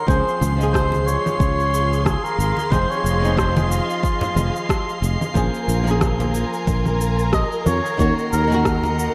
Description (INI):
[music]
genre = sunset chillout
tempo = 91 BPM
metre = 4/4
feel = swing 56% on 16ths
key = unclear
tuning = A4 = 440 Hz
[part]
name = trumpet with cup mute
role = melody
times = 0.0-9.1 s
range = F4 to Eb5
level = -26 LUFS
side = equal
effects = delay
[part]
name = flamenco guitar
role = accompaniment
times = 0.0-9.1 s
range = Eb3 to Ab4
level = -29 LUFS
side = equal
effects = low-pass filter, delay
[part]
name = warm studio string section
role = sustained chords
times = 0.0-9.1 s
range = Ab4 to C6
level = -30 LUFS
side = equal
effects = none
[part]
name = drifting glass-harmonics texture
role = texture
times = 0.0-9.1 s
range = C6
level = -35 LUFS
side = equal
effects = chorus, built-in reverb
[part]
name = sustaining fretless electric bass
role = bass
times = 0.1-9.1 s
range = F1 to F2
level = -23 LUFS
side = equal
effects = lush chorus
[part]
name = electronic cabasa, congas and rim click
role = drums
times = 0.1-9.1 s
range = none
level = -29 LUFS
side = equal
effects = overdrive
[part]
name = electronic kick drum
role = drums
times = 0.1-8.8 s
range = none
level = -25 LUFS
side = equal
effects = overdrive
[part]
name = congas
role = percussion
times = 0.9-9.0 s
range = none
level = -32 LUFS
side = equal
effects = none
[sound]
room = wet plate reverb, RT60 1.4 s, small room ambience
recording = dreamy mix soaked in reverb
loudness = -20 LUFS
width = mono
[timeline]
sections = 0.0-9.1 A section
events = none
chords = 0.1 Dbmaj7; 2.7 Fm7; 5.4 Bbm7; 8.0 Ebm7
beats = | 0.08 0.74 1.40 2.06 | 2.72 3.38 4.04 4.70 | 5.36 6.02 6.68 7.33 | 8.00 8.65